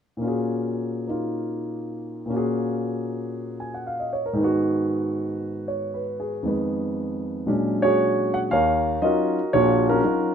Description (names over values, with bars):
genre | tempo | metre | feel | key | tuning
solo jazz | 116 BPM | 4/4 | swing 67% on 8ths | Eb minor | A4 = 440 Hz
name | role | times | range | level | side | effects
warm grand piano | solo | 0.2-10.3 s | Bb1 to Ab5 | -22 LUFS | equal | none
room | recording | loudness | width
moderate studio reverb, RT60 0.8 s | minimal, uncompressed stereo recording | -22 LUFS | side -7 dB against mid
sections
0.2-8.5 A section; 8.5-10.3 B section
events
none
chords
0.2 Ebm11/Bb; 4.4 Abm7; 6.4 Fm7b5; 7.5 Bb7alt; 8.5 Ebm9